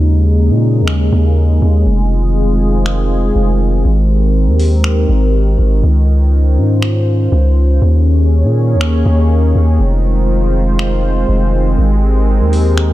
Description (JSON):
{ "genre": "hip hop, atmospheric cloud-rap", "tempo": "121 BPM", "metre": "4/4", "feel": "half-time", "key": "unclear", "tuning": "A4 = 439 Hz", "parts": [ { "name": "sweeping resonant pad", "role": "sustained chords", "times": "0.0-12.9 s", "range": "Db3 to Db5", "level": "-17 LUFS", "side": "equal", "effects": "chorus, low-pass filter" }, { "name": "long sustained 808-style bass", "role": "bass", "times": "0.0-12.9 s", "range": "F1 to Bb2", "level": "-11 LUFS", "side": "equal", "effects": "none" }, { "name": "booming analog drum machine", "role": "drums", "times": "0.9-12.9 s", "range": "finger snaps, hi-hat", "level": "-24 LUFS", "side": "equal", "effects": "none" } ], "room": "digital ambience", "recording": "dark, warm production", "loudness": "-10 LUFS", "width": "side -15 dB against mid", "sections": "0.0-12.9 A section", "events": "filter sweep on analog synth pad 0.0-12.9", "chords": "0.0 Eb7sus4; 1.9 Fm7; 3.9 Abmaj9; 5.8 Dbmaj9; 7.8 Eb7sus4; 9.8 Fm7; 11.8 Abmaj9", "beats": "0.38 0.88 1.37 | 1.87 2.36 2.86 3.35 | 3.85 4.35 4.84 5.34 | 5.83 6.33 6.83 7.32 | 7.82 8.31 8.81 9.31 | 9.80 10.30 10.79 11.29 | 11.79 12.28 12.78" }